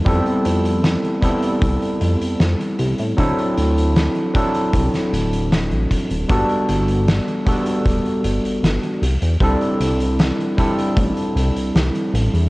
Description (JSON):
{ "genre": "vaporwave", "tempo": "77 BPM", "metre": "4/4", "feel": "straight", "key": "G major", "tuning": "A4 = 440 Hz", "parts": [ { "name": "overdriven tine electric piano", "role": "accompaniment", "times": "0.0-12.5 s", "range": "F#3 to A4", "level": "-20 LUFS", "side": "equal", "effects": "lush chorus, vintage 12-bit sampler grit, analog delay" }, { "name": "chorused synth bass", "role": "bass", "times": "0.0-12.5 s", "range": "D1 to A2", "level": "-19 LUFS", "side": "equal", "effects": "none" }, { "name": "kick drum", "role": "drums", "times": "0.1-11.1 s", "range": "none", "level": "-22 LUFS", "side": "equal", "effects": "vintage 12-bit sampler grit" }, { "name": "oversized low-tuned drum kit", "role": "drums", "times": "0.1-12.5 s", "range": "hi-hat, snare drum", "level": "-24 LUFS", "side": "equal", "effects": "vintage 12-bit sampler grit" } ], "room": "light reverb, small room reverb", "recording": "worn, warbling old tape, cassette tape, warbly pitch drift, nothing above 10.3 kHz", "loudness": "-16 LUFS", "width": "side -21 dB against mid", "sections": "0.0-12.5 A section", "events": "none", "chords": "0.1 Fmaj9#11; 3.2 D7; 6.3 Gmaj7; 9.0 C69", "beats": "| 0.07 0.84 1.62 2.40 | 3.18 3.96 4.74 5.52 | 6.30 7.08 7.86 8.64 | 9.42 10.20 10.97 11.75" }